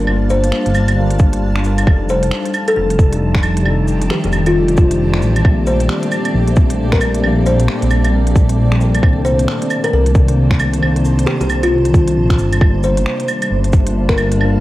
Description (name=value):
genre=future garage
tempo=134 BPM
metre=4/4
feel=swing 61% on 16ths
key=G minor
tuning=A4 = 440 Hz
part: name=mellow tine electric piano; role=accompaniment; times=0.0-14.6 s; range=Eb3 to C5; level=-21 LUFS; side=left 1 dB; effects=medium stereo tremolo, sidechain pumping, tape echo
part: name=granular cloud pad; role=sustained chords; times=0.0-14.6 s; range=Bb2 to A5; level=-22 LUFS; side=equal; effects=built-in reverb, sidechain pumping
part: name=dark detuned saw bass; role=bass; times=0.0-14.6 s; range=F1 to C2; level=-16 LUFS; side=equal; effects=sidechain pumping
part: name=wind-like tuned noise texture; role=texture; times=0.0-14.6 s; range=A3 to A5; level=-29 LUFS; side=equal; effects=built-in reverb
part: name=organic electronic drum kit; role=drums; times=0.1-14.5 s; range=cabasa, claves, finger snaps, hi-hat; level=-23 LUFS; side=right 2 dB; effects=none
part: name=kalimba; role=melody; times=0.3-14.3 s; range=F4 to C5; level=-20 LUFS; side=left 1 dB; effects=analog delay
part: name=electronic kick drum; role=drums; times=1.2-14.2 s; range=none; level=-12 LUFS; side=equal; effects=none
room=light reverb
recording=vinyl crackle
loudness=-12 LUFS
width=side -16 dB against mid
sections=0.0-14.6 A section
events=none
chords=0.0 Gm7; 1.9 F13; 5.4 Bb69; 9.0 Cm9; 12.6 Gm7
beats=| 0.08 0.52 0.97 1.42 | 1.87 2.31 2.76 3.21 | 3.66 4.11 4.55 5.00 | 5.45 5.90 6.34 6.79 | 7.24 7.69 8.14 8.58 | 9.03 9.48 9.93 10.38 | 10.82 11.27 11.72 12.17 | 12.61 13.06 13.51 13.96 | 14.40